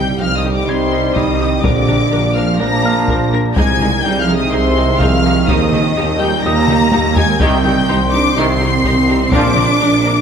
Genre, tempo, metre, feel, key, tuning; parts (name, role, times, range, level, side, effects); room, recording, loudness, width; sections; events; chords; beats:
cinematic, hybrid orchestral and electronic film score; 125 BPM; 4/4; straight; C minor; A4 = 440 Hz
rich symphonic violin section; melody; 0.0-10.2 s; C6 to D7; -20 LUFS; left 3 dB
warm symphonic violin section; second line; 0.0-10.2 s; C5 to D6; -21 LUFS; left 4 dB
rich symphonic viola section; accompaniment; 0.0-10.1 s; D4 to Bb4; -24 LUFS; equal
clear trombone section; sustained chords; 0.0-9.5 s; G2 to G3; -24 LUFS; right 2 dB
deep dark ambient pad; sustained chords; 0.0-10.2 s; Eb3 to Eb5; -23 LUFS; left 1 dB; chorus, built-in reverb
warm French horn section; sustained chords; 0.0-9.5 s; G3 to Eb4; -24 LUFS; left 4 dB
clear symphonic double bass section; bass; 0.0-10.2 s; Bb1 to Eb2; -20 LUFS; right 2 dB
mellow tuba; bass; 0.0-10.2 s; Bb1 to Eb2; -21 LUFS; right 3 dB
warm symphonic cello section; bass; 0.0-10.2 s; C3 to D4; -19 LUFS; right 3 dB
warm baby grand piano; texture; 0.7-9.4 s; C5 to Bb6; -28 LUFS; left 3 dB; ping-pong delay
solo taiko drums; drums; 1.2-9.8 s; -20 LUFS; left 1 dB
wet concert hall reverb, RT60 1.8 s; -11 LUFS; side -7 dB against mid
0.0-10.2 A section
drum fill 6.7-7.4
0.0 Cm; 1.6 Bb; 3.6 Ab/C; 5.5 Eb; 7.4 Cm; 9.3 Bb
0.20 0.69 1.17 | 1.65 2.12 2.60 3.08 | 3.56 4.04 4.53 5.00 | 5.49 5.96 6.45 6.92 | 7.41 7.88 8.37 8.85 | 9.32 9.80